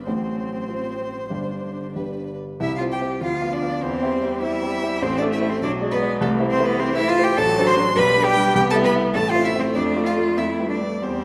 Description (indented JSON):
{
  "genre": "quick classical-period movement for piano quartet",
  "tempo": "90-104 BPM",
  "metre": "2/4",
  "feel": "rubato",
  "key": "C major",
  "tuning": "A4 = 440 Hz",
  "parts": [
    { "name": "warm violin", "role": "melody", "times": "0.0-11.2 s", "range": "A4 to C6", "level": "-29 LUFS", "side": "equal", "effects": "none" },
    { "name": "rich cello", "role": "second line", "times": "0.0-11.2 s", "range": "D3 to C5", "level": "-25 LUFS", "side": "equal", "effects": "none" },
    { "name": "warm grand piano", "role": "accompaniment", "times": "0.0-11.2 s", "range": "G1 to F5", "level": "-27 LUFS", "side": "equal", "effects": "none" },
    { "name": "warm viola", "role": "accompaniment", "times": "0.0-11.2 s", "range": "E3 to D4", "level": "-30 LUFS", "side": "equal", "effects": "none" }
  ],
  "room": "wet scoring stage reverb, RT60 1.6 s",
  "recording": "none",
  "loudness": "-21 LUFS",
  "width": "mono",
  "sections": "0.0-2.6 A section; 2.6-11.2 B section",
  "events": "none",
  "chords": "0.1 F/A; 1.3 Gsus4; 2.0 G; 2.6 C; 3.2 Bdim/D; 3.8 C/E; 5.0 Am; 5.6 G#dim/B; 6.2 Am/C; 7.4 D7/A; 8.0 G/B; 8.6 C; 9.1 Am; 9.8 Dm/F; 10.4 G7/F"
}